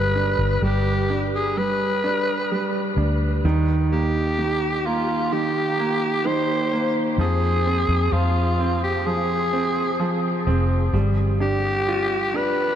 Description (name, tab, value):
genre	pop ballad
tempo	64 BPM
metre	4/4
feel	straight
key	unclear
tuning	A4 = 439 Hz
part	raspy alto saxophone	melody	0.0-12.8 s	F4 to C5	-23 LUFS	left 1 dB	ping-pong delay
part	bright baby grand piano	accompaniment	0.0-12.8 s	Eb3 to F4	-25 LUFS	right 3 dB	none
part	vintage muted fingered electric bass	bass	0.0-12.8 s	F1 to F2	-22 LUFS	left 1 dB	none
room	wet huge ambient reverb, RT60 7.5 s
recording	dreamy mix soaked in reverb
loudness	-19 LUFS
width	side -10 dB against mid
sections	0.0-12.8 A section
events	none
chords	0.0 G; 3.4 Eb; 7.2 Fm; 10.9 G7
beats	0.62 1.56 2.50 | 3.44 4.38 5.31 6.25 | 7.19 8.12 9.06 10.00 | 10.94 11.88